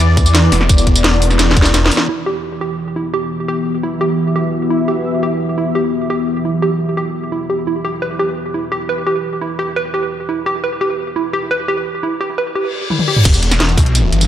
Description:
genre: dark technical drum and bass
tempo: 172 BPM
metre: 4/4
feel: straight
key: E minor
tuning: A4 = 440 Hz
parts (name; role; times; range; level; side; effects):
- sweeping resonant pad; sustained chords; 0.0-14.3 s; E3 to E5; -20 LUFS; left 1 dB; chorus, sidechain pumping
- snarling distorted saw bass; bass; 0.0-1.9, 13.3-14.3 s; E1 to E2; -13 LUFS; equal; distortion, tube saturation, sidechain pumping
- drum and bass drum kit; drums; 0.0-2.2, 12.9-14.3 s; crash cymbal, hi-hat, snare drum, tambourine, toms; -16 LUFS; equal; low-pass filter on hats, low-pass filter on perc, low-pass filter on snare, low-pass filter on cymbals, low-pass filter on toms, low-pass filter on room
- electronic kick drum; drums; 0.2-1.6, 13.3-13.8 s; none; -12 LUFS; equal; none
- warbly dusty pluck; arpeggios; 2.1-13.2 s; E4 to B4; -19 LUFS; right 2 dB; chorus, sidechain pumping, analog delay
- reverse cymbal; sound effects; 12.7-13.3 s; none; -22 LUFS; left 5 dB; none
room: wet church reverb, RT60 3.2 s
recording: dreamy mix soaked in reverb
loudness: -14 LUFS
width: side -10 dB against mid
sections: 0.0-2.1 A section; 2.1-13.3 B section; 13.3-14.3 A section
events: drop 0.0-2.1, 13.3-14.3; drum fill 1.4-2.1, 12.9-13.3; filter sweep on analog synth pad 2.1-13.3; reverse cymbal 12.7-13.3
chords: 0.0 E5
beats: 0.00 0.34 | 0.69 1.04 1.39 1.74 | 2.09 2.44 2.79 3.14 | 3.48 3.83 4.18 4.53 | 4.88 5.23 5.58 5.93 | 6.28 6.62 6.97 7.32 | 7.67 8.02 8.37 8.72 | 9.07 9.41 9.76 10.11 | 10.46 10.81 11.16 11.51 | 11.86 12.21 12.55 12.90 | 13.25 13.60 13.95

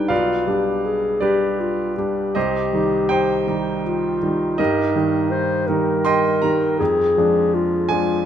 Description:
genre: classical, romantic duo for clarinet and grand piano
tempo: 81 BPM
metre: 3/4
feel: rubato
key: C minor, Eb major from 4.6 s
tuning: A4 = 440 Hz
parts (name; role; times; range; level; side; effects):
- mellow clarinet; melody; 0.0-8.3 s; Eb4 to C5; -21 LUFS; left 2 dB; none
- bright grand piano; accompaniment; 0.0-8.3 s; B1 to C6; -20 LUFS; right 2 dB; none
room: moderate recital hall reverb, RT60 1.4 s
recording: close, detailed microphones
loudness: -17 LUFS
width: side -9 dB against mid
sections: 0.0-8.3 A section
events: none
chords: 0.0 G/B; 2.4 Cm; 4.6 Eb/G; 6.8 Ddim/F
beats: | 0.11 0.86 1.60 | 2.36 3.10 3.85 | 4.59 5.32 6.05 | 6.80 7.53 8.25

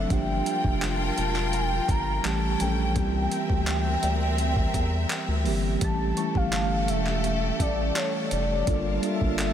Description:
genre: contemporary R&B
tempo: 84 BPM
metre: 4/4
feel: straight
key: unclear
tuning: A4 = 440 Hz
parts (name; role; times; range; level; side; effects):
- warm velvety synth lead; melody; 0.0-9.5 s; C#5 to Bb5; -30 LUFS; equal; chorus, analog delay
- mellow tine electric piano; accompaniment; 0.0-9.5 s; E3 to Bb4; -29 LUFS; right 1 dB; medium stereo tremolo
- clear studio string section; sustained chords; 0.0-9.5 s; G3 to A5; -32 LUFS; left 2 dB; none
- round analog bass; bass; 0.0-9.5 s; E1 to E2; -28 LUFS; equal; none
- glassy wavetable pluck; texture; 0.0-8.8 s; C5 to C#6; -49 LUFS; right 1 dB; none
- dusty soul sampler-style drum kit; drums; 0.1-9.5 s; handclaps, hi-hat, kick drum; -30 LUFS; equal; overdrive
room: moderate huge ambient reverb, RT60 6.3 s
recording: dreamy mix soaked in reverb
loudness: -23 LUFS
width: side -9 dB against mid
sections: 0.0-5.8 A section; 5.8-9.5 B section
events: none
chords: 0.1 Gm7; 2.2 A7; 3.0 C7; 5.8 A7; 8.7 Gm9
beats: | 0.10 0.82 1.53 2.25 | 2.96 3.67 4.39 5.10 | 5.82 6.53 7.25 7.96 | 8.67 9.39

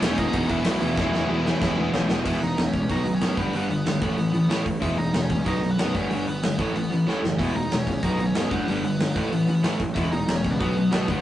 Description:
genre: punk rock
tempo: 187 BPM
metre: 4/4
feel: straight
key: unclear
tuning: A4 = 441 Hz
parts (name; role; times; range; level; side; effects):
- biting lead guitar; melody; 0.0-11.2 s; B3 to E5; -32 LUFS; right 1 dB; overdrive
- distorted electric guitar; riff; 0.0-11.2 s; G2 to G#4; -28 LUFS; left 3 dB; distortion
- overdriven electric guitar; riff; 0.0-11.2 s; E2 to B3; -26 LUFS; right 2 dB; none
- sludgy distorted guitar; riff; 0.0-2.3 s; E2 to E3; -31 LUFS; equal; none
- fuzz picked electric bass; bass; 0.0-11.2 s; E1 to F#2; -31 LUFS; equal; overdrive
- big rock drum kit; drums; 0.0-11.2 s; crash cymbal, hi-hat, kick drum, snare drum; -27 LUFS; left 1 dB; none
room: moderate stone room reverb, RT60 1.2 s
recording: rough rehearsal-room recording, nothing above 10.5 kHz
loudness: -21 LUFS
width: side -13 dB against mid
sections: 0.0-2.3 A section; 2.3-11.2 B section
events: drum fill 1.0-2.3, 7.1-7.4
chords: 0.0 E; 2.9 B; 3.4 G; 4.0 A5; 4.8 E; 5.5 B; 5.9 G; 6.6 A5; 7.4 E; 8.0 B; 8.5 G; 9.2 A5; 10.0 E; 10.6 B5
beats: 0.03 0.34 0.66 | 0.98 1.30 1.62 1.94 | 2.25 2.57 2.89 3.21 | 3.54 3.85 4.18 4.50 | 4.82 5.14 5.46 5.78 | 6.10 6.42 6.75 7.07 | 7.39 7.71 8.03 8.36 | 8.68 9.00 9.32 9.64 | 9.96 10.28 10.60 10.93

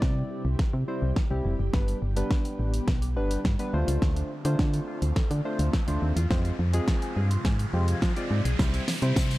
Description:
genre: dance-pop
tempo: 105 BPM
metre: 4/4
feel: straight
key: C major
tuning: A4 = 439 Hz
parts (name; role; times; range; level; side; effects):
- soft electric-piano-like synth keys; accompaniment; 0.0-9.4 s; G3 to D5; -32 LUFS; equal; chorus, sidechain pumping
- ethereal airy pad; sustained chords; 0.0-9.4 s; C3 to G4; -39 LUFS; left 1 dB; none
- glassy wavetable pluck; arpeggios; 0.0-9.4 s; G3 to Ab6; -40 LUFS; equal; chorus, sidechain pumping, low-pass filter, tape echo
- solid FM bass; bass; 0.0-9.4 s; F1 to F3; -26 LUFS; equal; sidechain pumping
- pop drum kit; drums; 0.0-9.4 s; hi-hat, kick drum, snare drum; -26 LUFS; equal; none
- riser; sound effects; 2.0-9.4 s; none; -41 LUFS; equal; none
- tambourine; percussion; 8.6-9.4 s; none; -40 LUFS; right 2 dB; none
room: little or no reverb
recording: dry, gritty hardware recording, transformer saturation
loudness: -24 LUFS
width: side -17 dB against mid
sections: 0.0-9.4 A section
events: build-up 0.0-9.4; drum fill 0.0-9.4; filter sweep 0.0-9.4; riser 2.0-9.4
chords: 0.0 C; 1.7 G; 3.7 Dm7; 6.3 Fm; 8.6 C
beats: 0.02 0.59 1.16 | 1.74 2.31 2.88 3.45 | 4.02 4.59 5.16 5.74 | 6.31 6.88 7.45 8.02 | 8.59 9.16

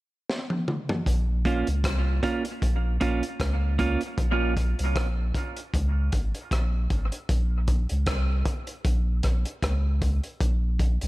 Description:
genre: dub reggae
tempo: 77 BPM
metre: 4/4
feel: swing 56% on 16ths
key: Bb minor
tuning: A4 = 444 Hz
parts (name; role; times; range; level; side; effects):
- crunchy breakbeat drum kit; drums; 0.3-11.1 s; hi-hat, kick drum, rim click, snare drum, toms; -28 LUFS; equal; none
- warm sub bass; bass; 1.1-11.1 s; Ab1 to Db2; -24 LUFS; equal; none
- clean electric guitar; accompaniment; 1.5-4.0 s; Bb3 to F4; -29 LUFS; right 4 dB; dub echo
room: small room ambience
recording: echo-heavy mix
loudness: -24 LUFS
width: side -19 dB against mid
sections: 0.0-1.1 A section; 1.1-11.1 B section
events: drum fill 0.3-1.1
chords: 0.0 N.C.; 1.1 Bbm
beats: 0.28 | 1.06 1.84 2.62 3.40 | 4.18 4.96 5.74 6.51 | 7.29 8.07 8.85 9.63 | 10.41

